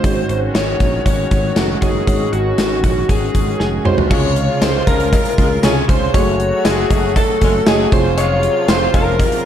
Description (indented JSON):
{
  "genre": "1980s-style pop",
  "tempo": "118 BPM",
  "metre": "4/4",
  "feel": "straight",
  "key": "Db major",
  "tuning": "A4 = 441 Hz",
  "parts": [
    { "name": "lead guitar through a small cranked amp", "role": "melody", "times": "0.0-9.5 s", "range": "Gb4 to Db5", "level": "-20 LUFS", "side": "left 2 dB", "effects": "overdrive" },
    { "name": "mellow FM electric piano", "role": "accompaniment", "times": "0.0-9.5 s", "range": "Ab2 to Eb5", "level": "-21 LUFS", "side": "right 2 dB", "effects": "chorus" },
    { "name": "brassy analog pad", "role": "sustained chords", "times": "0.0-9.5 s", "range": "C3 to Gb4", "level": "-24 LUFS", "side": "equal", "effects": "chorus" },
    { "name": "sustaining fretless electric bass", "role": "bass", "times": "0.0-9.2 s", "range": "F1 to Db2", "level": "-22 LUFS", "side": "equal", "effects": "none" },
    { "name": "gated 80s drum kit", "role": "drums", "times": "0.0-9.4 s", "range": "crash cymbal, hi-hat, kick drum, snare drum, tambourine, toms", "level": "-16 LUFS", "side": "equal", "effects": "none" },
    { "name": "shimmering bell with halo", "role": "second line", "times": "3.6-9.5 s", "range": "Ab5 to Db6", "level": "-27 LUFS", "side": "right 3 dB", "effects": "ensemble chorus, tremolo, tape echo" },
    { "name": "dark horn section", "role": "stabs", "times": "4.1-9.1 s", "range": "F3 to Db5", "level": "-25 LUFS", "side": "left 2 dB", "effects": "none" },
    { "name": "cowbell", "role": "percussion", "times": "4.1-9.3 s", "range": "none", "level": "-33 LUFS", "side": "left 4 dB", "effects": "none" }
  ],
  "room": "light reverb, small room ambience",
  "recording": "dark, warm production",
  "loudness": "-13 LUFS",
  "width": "side -10 dB against mid",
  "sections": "0.0-4.1 A section; 4.1-9.5 B section",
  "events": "drum fill 3.6-4.1",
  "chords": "0.0 Ab7sus4; 4.1 Dbmaj7; 6.1 Gbmadd9; 7.9 Dbmaj7/F"
}